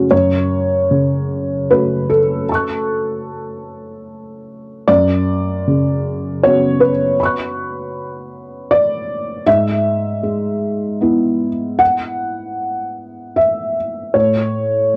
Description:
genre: neoclassical minimalist piano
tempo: 77 BPM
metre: 3/4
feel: rubato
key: F# minor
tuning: A4 = 440 Hz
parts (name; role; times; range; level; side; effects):
- felt-muted upright piano; solo; 0.0-15.0 s; F#2 to F#6; -17 LUFS; equal; none
room: light reverb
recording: home recording on cassette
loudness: -17 LUFS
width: mono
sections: 0.1-15.0 A section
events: none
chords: 0.1 F#m; 4.9 Bmadd9/F#; 9.5 E/G#; 14.1 A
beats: | 0.11 0.91 1.71 | 2.49 3.26 4.04 | 4.88 5.67 6.43 | 7.18 7.94 8.70 | 9.46 10.23 11.01 | 11.80 12.59 13.37 | 14.14 14.93

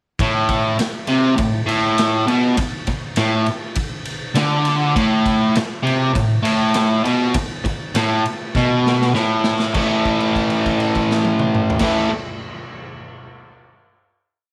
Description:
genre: garage rock duo or trio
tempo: 100 BPM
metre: 4/4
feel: straight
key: A minor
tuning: A4 = 441 Hz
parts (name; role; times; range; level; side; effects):
- overdriven electric guitar; riff; 0.2-12.1 s; A2 to A3; -19 LUFS; equal; none
- raw garage drum kit; drums; 0.2-11.9 s; crash cymbal, kick drum, ride cymbal, snare drum, toms; -26 LUFS; equal; none
room: light reverb, small room reverb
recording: none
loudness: -18 LUFS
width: mono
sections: 0.2-9.7 verse; 9.7-12.2 final chord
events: drum fill 8.5-9.7; held note 9.7-11.8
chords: 0.2 N.C.; 9.7 A5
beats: | 0.17 0.77 1.37 1.97 | 2.56 3.16 3.76 4.35 | 4.95 5.54 6.14 6.74 | 7.34 7.94 8.54 9.14 | 9.75 10.35 10.96 11.57

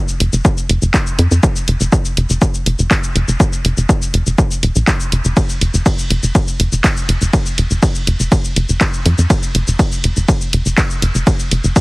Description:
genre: melodic techno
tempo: 122 BPM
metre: 4/4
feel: straight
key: unclear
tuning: A4 = 441 Hz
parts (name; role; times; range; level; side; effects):
- techno drum kit; drums; 0.1-11.8 s; handclaps, hi-hat, ride cymbal, shaker; -20 LUFS; equal; none
- tight sequencer bass; bass; 0.2-11.7 s; Eb1 to F2; -14 LUFS; equal; sidechain pumping
- electronic kick drum; drums; 0.4-11.8 s; none; -14 LUFS; equal; none
room: little or no reverb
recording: heavily compressed radio sound, multiband compression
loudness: -12 LUFS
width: side -24 dB against mid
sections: 0.0-11.8 A section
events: none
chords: none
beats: 0.45 0.94 | 1.43 1.93 2.42 2.91 | 3.40 3.89 4.38 4.88 | 5.37 5.86 6.35 6.84 | 7.33 7.83 8.32 8.81 | 9.30 9.79 10.29 10.78 | 11.27 11.76

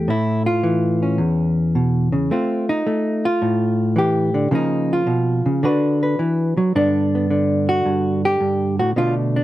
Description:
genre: solo jazz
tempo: 108 BPM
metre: 4/4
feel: swing 69% on 8ths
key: unclear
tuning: A4 = 439 Hz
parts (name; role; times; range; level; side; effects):
- hollow-body jazz guitar; solo; 0.0-9.4 s; E2 to B4; -17 LUFS; equal; none
room: little or no reverb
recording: close, detailed microphones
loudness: -17 LUFS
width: side -15 dB against mid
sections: 0.0-6.7 A section; 6.7-9.4 B section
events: hollow-body jazz guitar solo 0.0-6.7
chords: 0.1 A; 2.3 Dm7 (rootless); 4.5 Db6; 5.6 D69; 6.7 G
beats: | 0.07 0.63 1.19 1.74 | 2.30 2.85 3.41 3.97 | 4.52 5.08 5.63 6.19 | 6.75 7.30 7.86 8.42 | 8.97

